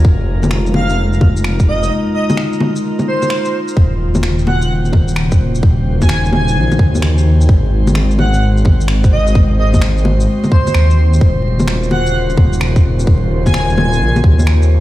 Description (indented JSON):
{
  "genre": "future garage",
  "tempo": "129 BPM",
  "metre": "4/4",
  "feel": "swing 66% on 16ths",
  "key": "Eb dorian",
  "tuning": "A4 = 441 Hz",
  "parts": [
    { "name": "warbly tape-like pad", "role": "sustained chords", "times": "0.0-14.8 s", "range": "Db3 to Gb4", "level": "-21 LUFS", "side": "left 1 dB", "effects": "chorus, built-in reverb, sidechain pumping" },
    { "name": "swelling detuned saw bass", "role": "bass", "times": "0.0-14.8 s", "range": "Eb1 to Eb2", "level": "-14 LUFS", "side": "equal", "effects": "sidechain pumping" },
    { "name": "electronic kick drum", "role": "drums", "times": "0.0-14.4 s", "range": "none", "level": "-10 LUFS", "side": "equal", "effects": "studio reverb" },
    { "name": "drifting glass-harmonics texture", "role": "texture", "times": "0.0-14.8 s", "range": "Bb3 to C5", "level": "-27 LUFS", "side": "equal", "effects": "chorus, built-in reverb" },
    { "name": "electronic bongos, shaker and finger snaps", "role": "drums", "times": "0.4-14.7 s", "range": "none", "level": "-19 LUFS", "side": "left 1 dB", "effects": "studio reverb" },
    { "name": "airy dreamy lead", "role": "melody", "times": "0.7-14.2 s", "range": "C5 to Ab5", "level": "-22 LUFS", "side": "right 1 dB", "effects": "chorus, digital delay" }
  ],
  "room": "little or no reverb",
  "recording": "played on a big sound system in a bare room, large studio reverb, vinyl crackle",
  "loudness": "-11 LUFS",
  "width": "side -15 dB against mid",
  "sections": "0.0-14.8 A section",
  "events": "break 1.9-3.8",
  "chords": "0.0 Fm7; 3.8 Ebm7; 7.5 Ab7; 11.2 Ebm7"
}